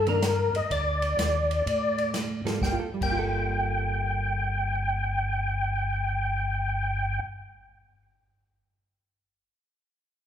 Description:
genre	soul jazz organ trio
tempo	126 BPM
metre	4/4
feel	swing 66% on 8ths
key	G minor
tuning	A4 = 440 Hz
part	percussive tonewheel organ	melody	0.0-7.2 s	Bb4 to G5	-27 LUFS	left 1 dB	slow rotary speaker, chorus vibrato
part	mellow tonewheel organ	bass	0.0-7.2 s	G1 to A2	-30 LUFS	equal	slow rotary speaker
part	hollow-body jazz guitar	accompaniment	0.1-8.0 s	Eb3 to A4	-34 LUFS	right 5 dB	none
part	open jazz drum kit	drums	0.1-3.1 s	crash cymbal, hi-hat, kick drum, ride cymbal, snare drum	-34 LUFS	left 1 dB	none
room	wet recital hall reverb, RT60 1.7 s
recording	recorded in a church or concert hall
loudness	-25 LUFS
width	side -9 dB against mid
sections	0.0-2.6 A section; 2.6-6.4 B section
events	none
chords	0.0 Cm9 (rootless); 0.7 D5; 2.6 Gm9

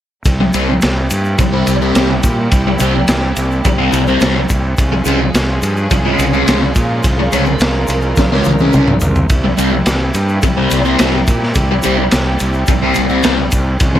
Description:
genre	psychedelic rock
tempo	106 BPM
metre	4/4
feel	straight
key	C phrygian dominant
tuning	A4 = 441 Hz
part	rich studio string section	sustained chords	0.3-14.0 s	F3 to Bb4	-21 LUFS	right 2 dB	none
part	fuzz fingered electric bass	bass	0.3-14.0 s	C2 to Bb2	-17 LUFS	equal	overdrive
part	crunchy breakbeat drum kit	drums	0.3-13.9 s	kick drum, ride cymbal, snare drum, toms	-16 LUFS	equal	none
part	egg shaker	percussion	0.3-13.9 s	none	-32 LUFS	left 4 dB	none
part	thick fuzz guitar	riff	0.4-14.0 s	C3 to Db4	-16 LUFS	left 1 dB	distortion, phaser
room	light reverb, small room ambience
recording	echo-heavy mix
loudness	-11 LUFS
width	side -11 dB against mid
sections	0.3-14.0 A section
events	drum fill 8.2-9.3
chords	0.3 C7; 4.8 Db/C; 9.3 C7

